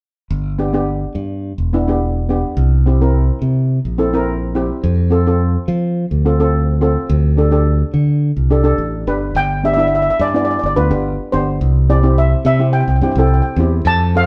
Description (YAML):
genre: calypso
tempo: 106 BPM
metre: 4/4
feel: straight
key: G mixolydian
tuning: A4 = 440 Hz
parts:
  - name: modern bright fingered electric bass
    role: bass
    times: 0.3-14.3 s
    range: E1 to F3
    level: -18 LUFS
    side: equal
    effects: none
  - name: steel pan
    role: accompaniment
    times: 0.6-14.2 s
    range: B3 to B4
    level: -21 LUFS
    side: equal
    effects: none
  - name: steel pan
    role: melody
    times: 9.4-14.3 s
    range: B4 to A5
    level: -20 LUFS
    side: equal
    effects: none
room: moderate stone room reverb, RT60 1.1 s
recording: band playing live in one room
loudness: -16 LUFS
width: mono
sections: 0.3-9.4 A section; 9.4-14.3 B section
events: none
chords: 0.3 G; 2.6 C7; 4.8 F; 7.1 Dsus4; 9.4 G; 11.6 C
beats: | 0.31 0.88 1.44 2.01 | 2.57 3.14 3.70 4.27 | 4.83 5.40 5.97 6.53 | 7.10 7.66 8.23 8.79 | 9.36 9.92 10.49 11.05 | 11.61 12.18 12.74 13.30 | 13.87